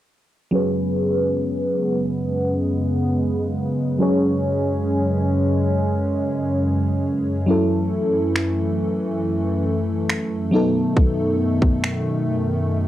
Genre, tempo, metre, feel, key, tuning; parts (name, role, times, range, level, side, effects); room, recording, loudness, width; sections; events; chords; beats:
contemporary R&B; 69 BPM; 4/4; straight; F# dorian; A4 = 441 Hz
FM electric piano with soft pad layer; accompaniment; 0.5-12.9 s; F#3 to C#5; -22 LUFS; equal; chorus, low-pass filter
hollow soft pad; sustained chords; 0.5-12.9 s; F#2 to C#4; -22 LUFS; equal; chorus, low-pass filter
trap drum kit; drums; 8.4-12.0 s; finger snaps, kick drum; -19 LUFS; equal; cassette tape
moderate studio reverb, RT60 0.6 s; home recording on cassette; -18 LUFS; side -13 dB against mid
0.5-12.9 A section
filter sweep 0.5-12.9; kick muted 12.7
0.5 F#sus24; 7.5 F#m7; 10.5 B7/F#
| 0.53 1.40 2.27 3.14 | 4.01 4.88 5.75 6.62 | 7.49 8.36 9.22 10.10 | 10.96 11.83 12.70